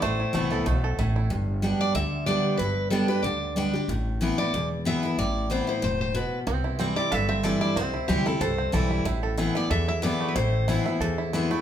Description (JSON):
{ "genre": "bluegrass", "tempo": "186 BPM", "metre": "4/4", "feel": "swing 54% on 8ths", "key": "A minor", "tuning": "A4 = 440 Hz", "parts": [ { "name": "bluegrass banjo", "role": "melody", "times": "0.0-1.3, 6.5-11.6 s", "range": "A3 to A4", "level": "-31 LUFS", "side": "right 6 dB", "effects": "none" }, { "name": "picked steel-string acoustic guitar", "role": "melody", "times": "0.0-11.3 s", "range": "G4 to E5", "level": "-29 LUFS", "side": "left 1 dB", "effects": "none" }, { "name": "picked steel-string acoustic guitar", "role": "accompaniment", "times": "0.0-11.6 s", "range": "E2 to G4", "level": "-26 LUFS", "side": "left 1 dB", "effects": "none" }, { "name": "upright bass", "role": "bass", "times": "0.0-11.4 s", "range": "E1 to E2", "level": "-29 LUFS", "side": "equal", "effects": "none" } ], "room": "wet large studio reverb, RT60 1.1 s", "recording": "band playing live in one room", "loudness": "-23 LUFS", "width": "side -10 dB against mid", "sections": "0.0-1.3 A section; 1.3-11.6 A section", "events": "none", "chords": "0.0 Amadd9; 1.3 G; 3.9 Amadd9; 6.5 C; 9.1 Amadd9" }